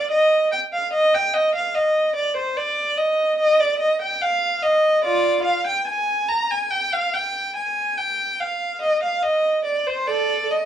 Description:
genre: classical, baroque-style suite movement for unaccompanied violin.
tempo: 72 BPM.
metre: 4/4.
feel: rubato.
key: Eb major from 3.4 s.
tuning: A4 = 440 Hz.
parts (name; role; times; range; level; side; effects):
rich violin; solo; 0.0-10.7 s; F4 to Bb5; -18 LUFS; right 1 dB; none.
room: moderate stone room reverb, RT60 1.0 s.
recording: small room ambience.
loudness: -18 LUFS.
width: side -10 dB against mid.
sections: 0.0-10.7 A section.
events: none.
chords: none.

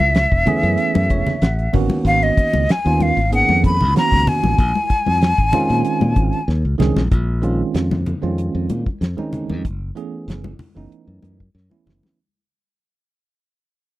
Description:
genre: electric jazz fusion.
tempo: 95 BPM.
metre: 4/4.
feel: straight.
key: Bb phrygian.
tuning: A4 = 443 Hz.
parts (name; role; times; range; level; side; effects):
breathy bright silver concert flute; melody; 0.0-6.5 s; Eb5 to Cb6; -18 LUFS; left 1 dB; slapback echo.
modern bright fingered electric bass; bass; 0.0-12.0 s; Fb1 to Bb2; -20 LUFS; equal; none.
congas; percussion; 0.0-12.2 s; none; -25 LUFS; left 2 dB; none.
damped 70s drum kit; drums; 0.1-12.2 s; hi-hat, kick drum, snare drum; -18 LUFS; equal; none.
bell-like tine electric piano; accompaniment; 0.5-12.2 s; Eb3 to Gb5; -22 LUFS; right 4 dB; slow stereo tremolo.
room: little or no reverb.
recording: dry, close 1970s-style studio recording.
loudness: -15 LUFS.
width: side -16 dB against mid.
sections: 0.0-7.1 A section; 7.1-12.2 B section.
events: tine electric piano fill 0.8-2.1; drum fill 6.5-7.1, 11.6-12.2; fade-out 7.1-12.2.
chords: 0.0 Gbm11; 1.7 Abm11; 4.6 Bbm11; 9.6 Gbm11.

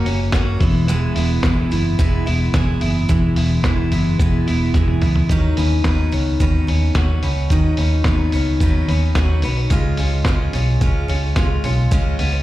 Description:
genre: jangly indie pop.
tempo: 109 BPM.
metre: 4/4.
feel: straight.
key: unclear.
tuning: A4 = 440 Hz.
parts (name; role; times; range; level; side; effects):
picked steel-string acoustic guitar; accompaniment; 0.0-12.4 s; C#3 to B4; -24 LUFS; right 4 dB; slapback echo.
twelve-string electric guitar; arpeggios; 0.0-12.4 s; D#3 to G#4; -23 LUFS; left 3 dB; slapback echo.
vintage muted fingered electric bass; bass; 0.1-12.4 s; E1 to D#2; -18 LUFS; equal; tube saturation.
lo-fi sampler-style drum kit; drums; 0.1-12.3 s; hi-hat, kick drum, snare drum, toms; -20 LUFS; equal; none.
room: little or no reverb.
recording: live gig heard through the venue's PA, club reverb.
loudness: -15 LUFS.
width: side -15 dB against mid.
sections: 0.0-12.4 A section.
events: drum fill 4.7-5.3.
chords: 0.0 F#; 0.6 E; 5.3 Badd9; 9.7 C#.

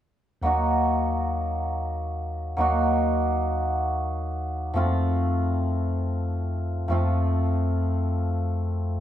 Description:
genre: balkan folk.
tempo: free time.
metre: none.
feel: none.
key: unclear.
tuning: A4 = 440 Hz.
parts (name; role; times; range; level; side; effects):
cimbalom; accompaniment; 0.4-9.0 s; F3 to Gb4; -26 LUFS; equal; none.
bell-like tine electric piano; bass; 0.4-9.0 s; Eb2 to F2; -26 LUFS; equal; none.
room: moderate studio reverb, RT60 0.9 s.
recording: band playing live in one room.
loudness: -23 LUFS.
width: side -11 dB against mid.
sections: 0.4-9.0 A section.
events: none.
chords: 0.4 Ebm; 4.7 F.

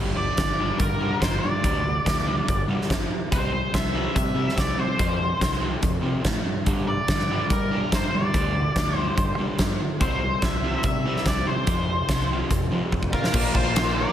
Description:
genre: classic rock.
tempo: 144 BPM.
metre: 4/4.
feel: straight.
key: G dorian.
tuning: A4 = 441 Hz.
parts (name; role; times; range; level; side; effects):
overdriven semi-hollow guitar; riff; 0.0-14.1 s; F2 to C4; -29 LUFS; left 1 dB; slapback echo.
growling fingered electric bass; bass; 0.0-14.0 s; G1 to G3; -28 LUFS; equal; overdrive.
octave-fuzz lead guitar; melody; 0.2-14.1 s; Bb4 to E5; -28 LUFS; equal; distortion, slapback echo.
huge arena drum kit; drums; 0.4-13.9 s; crash cymbal, hi-hat, kick drum, ride cymbal, snare drum; -25 LUFS; equal; none.
bright tonewheel organ; sustained chords; 13.0-14.1 s; Bb3 to E5; -35 LUFS; equal; none.
octave-fuzz lead guitar; second line; 13.1-14.1 s; F4 to Bb4; -32 LUFS; right 2 dB; distortion, slapback echo, tape echo.
room: moderate lush hall reverb, RT60 2.0 s.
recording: big arena sound.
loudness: -21 LUFS.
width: side -10 dB against mid.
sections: 0.0-13.3 A section.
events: drum fill 12.9-13.3.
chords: 0.0 G5; 3.3 C; 5.0 F5; 6.7 G5; 10.0 C; 11.7 F5; 13.3 Bb.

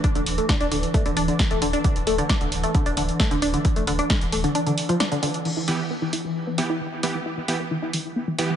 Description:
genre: driving peak-time techno.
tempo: 133 BPM.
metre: 4/4.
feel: straight.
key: E minor.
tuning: A4 = 441 Hz.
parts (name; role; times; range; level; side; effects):
tight sequenced synth; riff; 0.0-8.6 s; D3 to E4; -25 LUFS; equal; chorus, phaser, tube saturation, sidechain pumping, dub echo.
swarming drone; drone; 0.0-5.5 s; E3; -31 LUFS; equal; built-in reverb, sidechain pumping.
electronic kick drum; drums; 0.0-4.2 s; none; -22 LUFS; equal; none.
punchy analog drum machine; drums; 0.0-8.5 s; crash cymbal, hi-hat, snare drum; -28 LUFS; equal; none.
saturated sub bass; bass; 0.2-4.4 s; D1; -30 LUFS; equal; tube saturation, sidechain pumping, low-pass filter.
supersaw stab; stabs; 5.7-8.5 s; E3 to G4; -27 LUFS; right 2 dB; cassette tape, sidechain pumping, dub echo.
room: moderate lush hall reverb, RT60 1.7 s.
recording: heavily compressed radio sound, multiband compression, nothing above 10.7 kHz, faint mains hum.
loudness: -21 LUFS.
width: side -9 dB against mid.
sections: 0.0-5.5 A section; 5.5-8.6 B section.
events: kick drops out 4.5-5.5; filter sweep on synth arpeggio sound 5.5-8.6.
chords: 0.0 D5; 5.5 Em.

